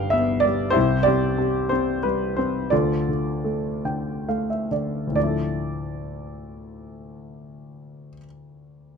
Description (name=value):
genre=classical, lyrical solo piano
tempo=65-96 BPM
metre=3/4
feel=rubato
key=D dorian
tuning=A4 = 439 Hz
part: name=dark grand piano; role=solo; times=0.0-9.0 s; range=G1 to G5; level=-22 LUFS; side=equal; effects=none
room=moderate small room reverb, RT60 0.5 s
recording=dark, warm production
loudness=-21 LUFS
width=side -6 dB against mid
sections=0.0-5.2 A section; 5.2-9.0 B section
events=slowing down 0.8-5.2; grand piano fill 3.4-5.2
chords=0.0 G; 0.8 C; 2.7 Dm; 5.2 Dmadd9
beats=0.13 | 0.76 1.39 2.04 | 2.71 3.44 4.26 | 5.16 6.06 6.95 | 7.82 8.68